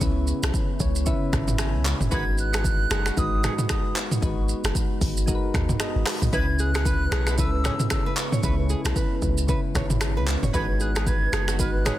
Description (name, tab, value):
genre	afrobeats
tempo	114 BPM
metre	4/4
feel	swing 58% on 16ths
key	C# minor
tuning	A4 = 440 Hz
part	silver concert flute	melody	0.0-12.0 s	C#6 to G#6	-31 LUFS	right 2 dB	digital delay
part	soft electric-piano-like synth keys	accompaniment	0.0-12.0 s	C#3 to G#5	-31 LUFS	left 2 dB	chorus
part	deep dark ambient pad	sustained chords	0.0-12.0 s	C#3 to F#4	-35 LUFS	right 2 dB	chorus, built-in reverb
part	punchy sub bass	bass	0.0-11.9 s	F#1 to D#2	-25 LUFS	equal	none
part	deep house drum kit	drums	0.0-12.0 s	finger snaps, handclaps, hi-hat, kick drum, rim click, shaker, toms	-25 LUFS	equal	soft clipping on snare
part	warm horn section	second line	2.1-11.9 s	D#3 to B4	-36 LUFS	right 2 dB	none
part	nylon-string guitar	riff	6.3-12.0 s	G#4 to C#5	-33 LUFS	right 5 dB	digital delay
room	digital ambience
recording	dense, heavily limited modern master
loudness	-21 LUFS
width	side -14 dB against mid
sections	0.0-12.0 A section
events	synth keys fill 0.5-2.1, 5.5-6.3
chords	0.0 C#m7; 2.1 G#m7; 6.3 C#m7; 10.5 G#m7